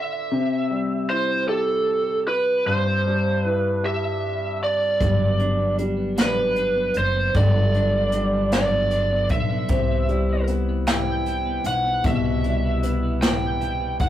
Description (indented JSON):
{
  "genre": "six-eight pop ballad",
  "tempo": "51 BPM (dotted quarters)",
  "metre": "6/8",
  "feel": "straight",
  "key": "unclear",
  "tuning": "A4 = 439 Hz",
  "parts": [
    { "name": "lead guitar through a small cranked amp", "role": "melody", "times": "0.0-14.1 s", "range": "A4 to G5", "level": "-23 LUFS", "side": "right 2 dB", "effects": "overdrive" },
    { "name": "warm grand piano", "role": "accompaniment", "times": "0.0-14.1 s", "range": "G2 to D5", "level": "-26 LUFS", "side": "left 3 dB", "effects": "none" },
    { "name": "twelve-string electric guitar", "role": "arpeggios", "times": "5.0-14.1 s", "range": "F#3 to E4", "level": "-31 LUFS", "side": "equal", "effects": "none" },
    { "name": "upright bass", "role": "bass", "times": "5.0-14.1 s", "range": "F#1 to C2", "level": "-24 LUFS", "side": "equal", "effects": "none" },
    { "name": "jazz brush drum kit", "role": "drums", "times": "5.0-14.1 s", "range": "hi-hat, kick drum, snare drum", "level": "-25 LUFS", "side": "left 1 dB", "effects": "none" }
  ],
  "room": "wet studio ambience, RT60 0.5 s",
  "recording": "rough rehearsal-room recording",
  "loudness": "-19 LUFS",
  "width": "side -12 dB against mid",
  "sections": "0.0-14.1 A section",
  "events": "none",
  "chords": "0.3 C; 5.0 Gmaj7; 9.7 Cmaj7"
}